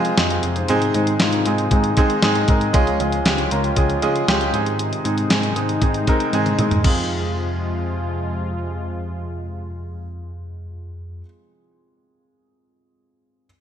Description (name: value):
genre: 1980s-style pop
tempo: 117 BPM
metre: 4/4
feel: straight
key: F minor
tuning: A4 = 440 Hz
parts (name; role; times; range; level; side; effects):
- clear concert grand piano; accompaniment; 0.0-13.5 s; Ab3 to F5; -20 LUFS; right 1 dB; none
- warm analog pad; sustained chords; 0.0-11.2 s; C3 to F4; -28 LUFS; left 2 dB; chorus
- bell-like tine electric piano; bass; 0.0-11.2 s; Db2 to Ab3; -26 LUFS; equal; medium stereo tremolo
- clean 12-bit digital drum machine; drums; 0.0-7.0 s; crash cymbal, hi-hat, kick drum, snare drum, toms; -20 LUFS; equal; gated reverb
room: wet lush hall reverb, RT60 2.2 s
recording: bright 1980s-style digital production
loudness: -17 LUFS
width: side -9 dB against mid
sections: 0.0-6.8 A section; 6.8-10.9 B section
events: drum fill 6.3-6.8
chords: 0.0 Fm; 0.7 Ab; 2.7 Db; 4.5 Ab; 6.8 Fm